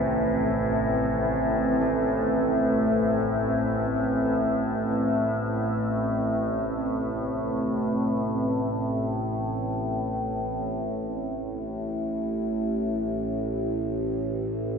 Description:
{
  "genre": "dark ambient drone",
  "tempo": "free time",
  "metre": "none",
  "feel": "none",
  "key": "A minor",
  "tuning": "A4 = 441 Hz",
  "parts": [
    { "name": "deep dark ambient pad", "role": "sustained chords", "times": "0.0-10.5 s", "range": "A3 to E5", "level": "-26 LUFS", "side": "equal", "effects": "chorus, built-in reverb" },
    { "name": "carillon bells", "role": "arpeggios", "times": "0.0-8.5 s", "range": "C3 to A3", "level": "-35 LUFS", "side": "equal", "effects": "none" },
    { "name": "overtone-sweeping drone", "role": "drone", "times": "0.0-14.8 s", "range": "A1 to A2", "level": "-27 LUFS", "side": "equal", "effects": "chorus, built-in reverb" }
  ],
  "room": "wet cathedral reverb, RT60 5.2 s",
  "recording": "none",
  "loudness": "-24 LUFS",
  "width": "side -6 dB against mid",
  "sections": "0.0-10.5 A section; 10.5-14.8 B section",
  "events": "none",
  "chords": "0.0 Amadd9; 10.5 N.C."
}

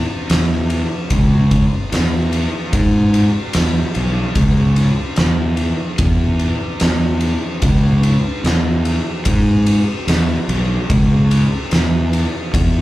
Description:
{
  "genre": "stoner and doom metal",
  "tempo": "74 BPM",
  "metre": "4/4",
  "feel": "straight",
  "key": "C# minor",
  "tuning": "A4 = 440 Hz",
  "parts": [
    { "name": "fuzz fingered electric bass", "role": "bass", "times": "0.3-12.8 s", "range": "B1 to G#2", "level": "-15 LUFS", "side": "equal", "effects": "overdrive" },
    { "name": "oversized low-tuned drum kit", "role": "drums", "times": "0.3-12.7 s", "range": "kick drum, ride cymbal, snare drum", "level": "-18 LUFS", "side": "equal", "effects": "none" }
  ],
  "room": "little or no reverb",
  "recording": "live gig heard through the venue's PA, club reverb",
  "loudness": "-14 LUFS",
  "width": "side -16 dB against mid",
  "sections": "0.0-12.8 A section",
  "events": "none",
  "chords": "none"
}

